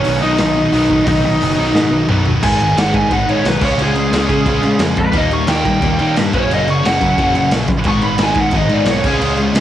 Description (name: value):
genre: punk rock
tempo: 177 BPM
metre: 4/4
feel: straight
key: G# dorian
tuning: A4 = 440 Hz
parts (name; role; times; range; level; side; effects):
- lead guitar through a small cranked amp; melody; 0.0-9.4 s; C#4 to C#6; -17 LUFS; equal; overdrive, cassette tape
- distorted electric guitar; riff; 0.0-9.6 s; F#2 to C#4; -22 LUFS; left 8 dB; distortion, cassette tape
- high-gain distorted guitar; riff; 0.0-9.6 s; F#2 to E#4; -20 LUFS; equal; distortion, cassette tape
- sludgy distorted guitar; riff; 0.0-9.6 s; F#2 to C#4; -23 LUFS; right 6 dB; overdrive, cassette tape
- raw garage drum kit; drums; 0.0-9.6 s; crash cymbal, hi-hat, kick drum, snare drum, toms; -19 LUFS; equal; cassette tape
- growling picked electric bass; bass; 0.1-9.6 s; F#1 to D#3; -19 LUFS; equal; overdrive
room: light reverb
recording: home recording on cassette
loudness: -12 LUFS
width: side -11 dB against mid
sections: 0.0-2.4 A section; 2.4-9.6 B section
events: half time 0.0-2.4; drum fill 1.8-2.4; lead electric guitar solo 2.4-9.6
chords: 0.0 B; 2.4 G#m; 3.6 C#; 5.1 D#; 6.3 F#; 7.9 G#m; 9.0 C#